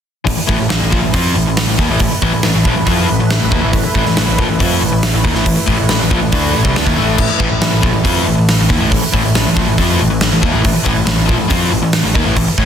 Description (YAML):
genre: hard rock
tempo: 139 BPM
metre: 4/4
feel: straight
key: A minor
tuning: A4 = 440 Hz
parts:
  - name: overdriven semi-hollow guitar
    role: riff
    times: 0.2-12.7 s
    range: A2 to F4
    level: -17 LUFS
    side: left 8 dB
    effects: none
  - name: warm analog pad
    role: sustained chords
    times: 0.3-12.7 s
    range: A3 to B4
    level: -23 LUFS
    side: right 2 dB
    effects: chorus
  - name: sludgy distorted guitar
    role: riff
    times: 0.3-12.7 s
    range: A2 to F4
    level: -19 LUFS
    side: right 9 dB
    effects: overdrive
  - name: picked electric bass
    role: bass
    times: 0.3-12.7 s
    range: A1 to F2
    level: -18 LUFS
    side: equal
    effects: none
  - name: gated 80s drum kit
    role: drums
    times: 0.3-12.7 s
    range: crash cymbal, hi-hat, kick drum, snare drum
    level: -16 LUFS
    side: equal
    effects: none
room: light reverb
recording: dense, heavily limited modern master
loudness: -11 LUFS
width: side -8 dB against mid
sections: 0.3-12.7 A section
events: none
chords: 0.3 Am